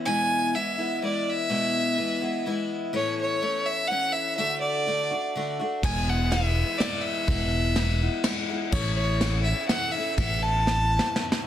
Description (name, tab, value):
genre	folk rock and heartland rock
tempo	124 BPM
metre	3/4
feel	straight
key	unclear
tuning	A4 = 440 Hz
part	picked steel-string acoustic guitar	accompaniment	0.0-11.5 s	E2 to F#4	-29 LUFS	left 2 dB	none
part	warm fiddle	melody	0.1-11.4 s	C#5 to A5	-27 LUFS	right 1 dB	none
part	fingered electric bass	bass	5.8-11.0 s	E1 to A1	-26 LUFS	equal	none
part	soft brush drum kit	drums	5.8-11.4 s	crash cymbal, kick drum, ride cymbal, snare drum	-28 LUFS	left 1 dB	none
room	light reverb, studio ambience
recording	dense, heavily limited modern master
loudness	-23 LUFS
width	side -11 dB against mid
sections	0.0-11.5 A section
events	drum fill 10.7-11.5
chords	0.0 E; 2.9 A; 4.4 D; 5.8 E; 8.7 A; 10.2 Aadd9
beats	| 0.04 0.52 1.00 | 1.49 1.97 2.45 | 2.93 3.41 3.90 | 4.38 4.86 5.34 | 5.83 6.31 6.79 | 7.28 7.76 8.24 | 8.73 9.21 9.69 | 10.18 10.66 11.15